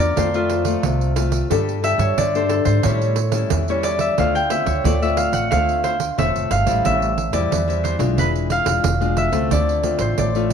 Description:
samba and choro; 90 BPM; 4/4; straight; D minor, A minor from 6.8 s; A4 = 441 Hz
concert harp; melody; 0.0-10.5 s; F4 to G5; -21 LUFS; right 1 dB
nylon-string guitar; accompaniment; 0.0-10.5 s; A2 to A4; -23 LUFS; left 8 dB
upright bass; bass; 0.0-10.5 s; E1 to A2; -22 LUFS; right 1 dB
pandeiro; percussion; 0.2-10.5 s; -25 LUFS; right 11 dB
moderate echo chamber reverb, RT60 1.4 s, small room ambience; 1960s-style stereo with parts hard left and right; -17 LUFS; side -7 dB against mid
0.0-6.8 A section; 6.8-10.5 B section
harp solo 0.0-6.8
0.2 F; 1.5 Gsus2; 2.8 A7; 4.2 Dm7; 6.8 Am7; 8.2 E7b9; 9.5 Dm7

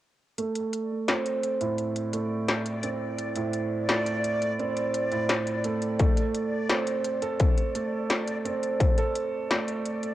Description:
half-time drum and bass; 171 BPM; 4/4; half-time; A4 = 441 Hz
felt-muted upright piano; arpeggios; 0.4-10.1 s; A2 to A4; -28 LUFS; right 2 dB; low-pass filter, cassette tape, tape echo
industrial drum kit; drums; 0.4-10.1 s; hi-hat, snare drum; -29 LUFS; left 2 dB; cassette tape
backwards swelling texture; texture; 2.1-10.1 s; D5; -34 LUFS; left 1 dB; built-in reverb, cassette tape
electronic kick drum; drums; 6.0-8.9 s; -22 LUFS; left 2 dB; distortion, cassette tape
wet spring reverb, RT60 1.9 s; home recording on cassette; -25 LUFS; side -14 dB against mid
0.4-10.1 A section
filter sweep on felt piano 0.4-10.1
0.4 D5

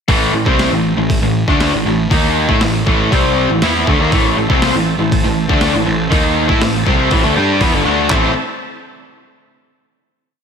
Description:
classic rock; 120 BPM; 4/4; straight; A4 = 437 Hz
cranked stack guitar; riff; 0.1-8.3 s; G2 to A4; -17 LUFS; left 9 dB; overdrive, slapback echo
distorted electric guitar; riff; 0.1-8.3 s; G2 to C5; -18 LUFS; right 9 dB; distortion
fuzz picked electric bass; bass; 0.1-8.3 s; G1 to A2; -19 LUFS; equal; overdrive
boom bap sampler-style drum kit; drums; 0.1-8.2 s; handclaps, hi-hat, kick drum, snare drum; -18 LUFS; equal; overdrive
tonewheel organ; sustained chords; 4.1-8.4 s; A4 to A5; -24 LUFS; equal; slow rotary speaker, overdrive, chorus vibrato
moderate lush hall reverb, RT60 1.9 s, digital ambience; big arena sound; -12 LUFS; side -6 dB against mid
0.1-8.1 riff; 8.1-10.1 final chord
kick and snare drop out 7.1-8.1
0.1 Am

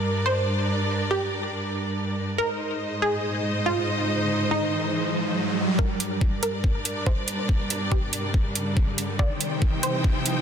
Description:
heavy wobble dubstep; 141 BPM; 4/4; half-time; G phrygian; A4 = 440 Hz
wide unison pluck; melody; 0.0-10.4 s; Eb4 to D5; -29 LUFS; right 1 dB; ping-pong delay
clear studio string section; sustained chords; 0.0-10.4 s; G2 to G5; -26 LUFS; equal; sidechain pumping
riser; sound effects; 4.0-10.4 s; -30 LUFS; equal
electronic kick drum; drums; 5.8-10.1 s; -22 LUFS; equal
electronic hi-hat; drums; 6.0-10.3 s; -26 LUFS; right 3 dB; high-pass filter on cymbals, high-pass filter on hats, high-pass filter on room
light reverb, digital ambience; dense, heavily limited modern master; -22 LUFS; side -8 dB against mid
0.0-5.8 A section; 5.8-10.4 B section
riser 4.0-5.8, 5.8-10.4; build-up 5.8-10.4; filter sweep on synth pluck 5.8-10.4; drum fill 9.2-10.4
0.0 Gm; 2.4 Ab; 5.8 Gm; 9.2 Cm

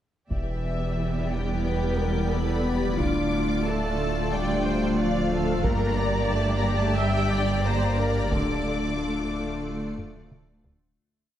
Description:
cinematic, hybrid orchestral and electronic film score; 90 BPM; 4/4; straight; D minor; A4 = 440 Hz
rich symphonic violin section; melody; 0.3-10.3 s; E5 to D6; -34 LUFS; left 4 dB
clear symphonic violin section; second line; 0.3-10.7 s; F4 to D5; -34 LUFS; left 2 dB
icy glass pad; sustained chords; 1.1-11.0 s; G3 to D5; -32 LUFS; equal; chorus, built-in reverb
mellow French horn section; sustained chords; 0.3-10.3 s; E3 to D4; -30 LUFS; left 2 dB
dark studio cello section; bass; 0.3-10.7 s; D2 to G2; -30 LUFS; right 2 dB
punchy sub bass; bass; 0.3-11.0 s; D1 to G1; -32 LUFS; equal
rich symphonic double bass section; bass; 0.3-10.7 s; E1 to D2; -33 LUFS; right 3 dB
taiko ensemble; drums; 0.3-11.0 s; -31 LUFS; equal
rich studio viola section; accompaniment; 1.6-10.7 s; F4 to E5; -31 LUFS; right 1 dB
moderate scoring stage reverb, RT60 2.0 s; dark, warm production; -23 LUFS; side -11 dB against mid
0.3-11.0 theme
fade-out 8.3-11.0; drum fill 10.0-11.0
0.3 Em7; 3.0 Dm; 5.7 Gm; 8.3 Dm

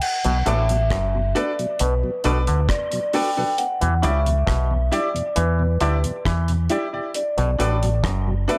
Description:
roots reggae; 67 BPM; 4/4; straight; B minor; A4 = 444 Hz
vibraphone with soft mallets; melody; 0.0-8.6 s; B4 to G5; -27 LUFS; equal; tape echo
deep reggae drum kit; drums; 0.0-8.6 s; crash cymbal, hi-hat, kick drum, rim click; -30 LUFS; equal
mellow tonewheel organ; accompaniment; 0.2-8.6 s; E2 to E4; -34 LUFS; equal; tape echo
mellow clav; riff; 0.2-8.3 s; F#2 to E3; -32 LUFS; equal; auto-wah
deep dub fingered electric bass; bass; 0.3-8.5 s; F#1 to E2; -23 LUFS; equal
clean electric guitar; accompaniment; 0.5-8.6 s; E4 to D5; -32 LUFS; equal; tape echo
clear baby grand piano; stabs; 0.5-8.6 s; D4 to D5; -30 LUFS; equal
light reverb, studio reverb; -21 LUFS; mono
0.0-8.6 A section
0.0 Bm7; 3.6 Em7; 7.1 Bm7

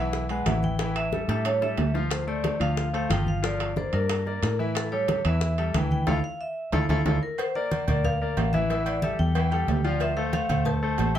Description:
latin, salsa; 182 BPM; 4/4; straight; D minor; A4 = 438 Hz
vibraphone with hard mallets; melody; 0.0-11.2 s; A4 to A5; -30 LUFS; equal
bright grand piano; accompaniment; 0.0-11.2 s; E3 to F5; -30 LUFS; left 3 dB
fingered electric bass; bass; 0.0-11.2 s; G1 to A2; -27 LUFS; equal
bongos and cowbell; percussion; 0.1-11.2 s; -34 LUFS; left 4 dB
congas; percussion; 0.1-11.2 s; -31 LUFS; equal
timbales and agogo bells; percussion; 0.3-11.2 s; -34 LUFS; right 7 dB
moderate studio reverb, RT60 0.6 s; heard from further back in the room; -23 LUFS; side -10 dB against mid
0.0-7.4 A section; 7.4-11.2 B section
drum fill 1.3-2.1, 6.4-7.4; band accent 6.1-7.4
0.0 E; 0.8 A5; 2.1 Dm7; 3.4 Gm7; 4.8 A7; 6.1 Dmadd9; 7.4 Bbmaj7#11; 8.7 A5; 10.0 Dm7

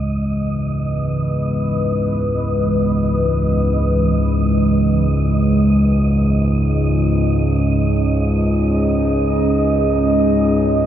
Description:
dark ambient drone; free time; C# minor; A4 = 440 Hz
dark analog pad; sustained chords; 0.3-10.9 s; E3 to D#5; -21 LUFS; equal; chorus, phaser
analog drone; drone; 0.0-10.9 s; C#2 to G#2; -16 LUFS; equal; chorus
wind-like tuned noise texture; texture; 0.0-10.9 s; D#5; -28 LUFS; right 4 dB; built-in reverb
wet huge ambient reverb, RT60 8.5 s; -15 LUFS; side -10 dB against mid
0.0-10.9 A section
fade-in on synth texture 0.0-10.9
0.0 C#m9

